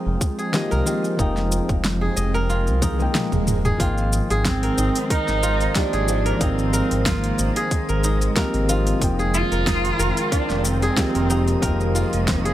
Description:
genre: organic downtempo.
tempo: 92 BPM.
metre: 4/4.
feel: swing 54% on 16ths.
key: unclear.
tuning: A4 = 440 Hz.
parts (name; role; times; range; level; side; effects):
felt-muted upright piano; accompaniment; 0.0-12.5 s; Eb3 to G5; -28 LUFS; left 2 dB; sidechain pumping, tape echo.
warm analog pad; sustained chords; 0.0-12.5 s; Eb3 to G5; -29 LUFS; right 1 dB; chorus, sidechain pumping.
kora; arpeggios; 0.0-12.5 s; Eb4 to Eb5; -27 LUFS; equal; tape echo.
smooth gliding synth bass; bass; 0.1-12.5 s; Eb1 to C2; -23 LUFS; equal; sidechain pumping.
deep house drum kit; drums; 0.2-12.5 s; hi-hat, shaker, snare drum, toms; -26 LUFS; equal; none.
electronic kick drum; drums; 0.2-12.4 s; none; -23 LUFS; equal; none.
swell; sound effects; 2.8-3.8 s; none; -31 LUFS; right 2 dB; none.
wind-like tuned noise texture; texture; 5.1-12.5 s; C4 to Eb6; -35 LUFS; left 2 dB; built-in reverb.
warm cello; melody; 4.4-12.5 s; Ab3 to F4; -25 LUFS; right 2 dB; tape echo.
room: light reverb, digital ambience.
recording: none.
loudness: -18 LUFS.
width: side -13 dB against mid.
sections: 0.0-3.8 A section; 3.8-12.5 B section.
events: swell 2.8-3.8; drum fill 2.8-3.8.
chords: 0.0 Fm11; 3.8 Abmaj7; 9.0 Fm11.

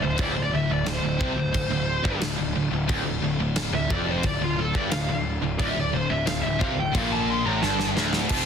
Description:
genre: heavy metal.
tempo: 89 BPM.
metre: 4/4.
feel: straight.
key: D minor.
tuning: A4 = 435 Hz.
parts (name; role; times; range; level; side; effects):
high-gain lead guitar; melody; 0.0-8.5 s; F4 to C6; -29 LUFS; right 1 dB; distortion, tape echo.
distorted electric guitar; riff; 0.0-8.5 s; D2 to F3; -32 LUFS; equal; none.
high-gain distorted guitar; riff; 0.0-8.5 s; D2 to F4; -29 LUFS; left 8 dB; distortion.
tight distorted guitar; riff; 0.0-8.5 s; D2 to F3; -32 LUFS; right 10 dB; distortion.
fuzz picked electric bass; bass; 0.0-8.5 s; D1 to C2; -30 LUFS; equal; overdrive.
big rock drum kit; drums; 0.2-8.5 s; crash cymbal, kick drum, snare drum; -28 LUFS; equal; soft clipping on snare.
glass harmonica; sustained chords; 2.9-8.5 s; D4 to G5; -42 LUFS; equal; none.
room: small room ambience.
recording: dense, heavily limited modern master.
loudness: -22 LUFS.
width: side -7 dB against mid.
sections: 0.0-8.3 A section.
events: lead electric guitar solo 0.0-8.3; drum fill 7.6-8.3.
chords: 0.0 Dm.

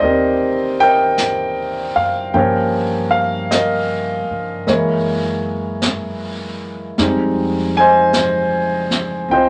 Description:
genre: jazz ballad.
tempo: 52 BPM.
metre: 4/4.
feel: swing 68% on 8ths.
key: C minor.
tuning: A4 = 441 Hz.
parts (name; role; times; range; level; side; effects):
warm concert grand piano; accompaniment; 0.0-9.5 s; Eb3 to Ab5; -18 LUFS; equal; none.
upright bass; bass; 0.0-9.5 s; C2 to G2; -30 LUFS; equal; none.
jazz brush drum kit; drums; 0.0-9.5 s; brushed snare drum, hi-hat, snare drum; -26 LUFS; equal; none.
room: moderate studio ambience, RT60 0.4 s.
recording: nothing above 11.0 kHz.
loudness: -17 LUFS.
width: mono.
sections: 0.0-9.5 A section.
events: none.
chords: 0.0 Cm7; 2.3 Gm7b5; 4.7 F#13; 7.0 Fm7.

